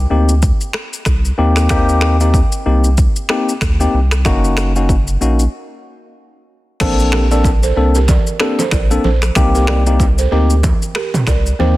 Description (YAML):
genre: afrobeats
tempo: 94 BPM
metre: 4/4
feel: swing 58% on 16ths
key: unclear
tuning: A4 = 440 Hz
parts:
  - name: saturated sub bass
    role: bass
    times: 0.0-11.8 s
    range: Gb1 to Eb2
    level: -14 LUFS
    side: equal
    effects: none
  - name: mellow tine electric piano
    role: accompaniment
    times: 0.1-11.8 s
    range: Bb3 to A4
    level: -18 LUFS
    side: left 3 dB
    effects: none
  - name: deep house drum kit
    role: drums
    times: 0.3-11.6 s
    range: crash cymbal, finger snaps, kick drum, rim click, shaker, toms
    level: -16 LUFS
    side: equal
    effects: overdrive
  - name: balafon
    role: riff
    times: 6.8-11.7 s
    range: G4 to D5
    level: -22 LUFS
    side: right 8 dB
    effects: digital delay
  - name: congas and bongos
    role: percussion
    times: 6.8-11.8 s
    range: none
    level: -25 LUFS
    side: right 4 dB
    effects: none
room: light reverb, digital ambience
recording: dense, heavily limited modern master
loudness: -12 LUFS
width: side -17 dB against mid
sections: 0.0-6.8 A section; 6.8-11.8 B section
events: break 5.5-6.8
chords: 0.0 Cm7; 4.3 Gb6; 6.8 Bbmaj9; 9.4 Cm7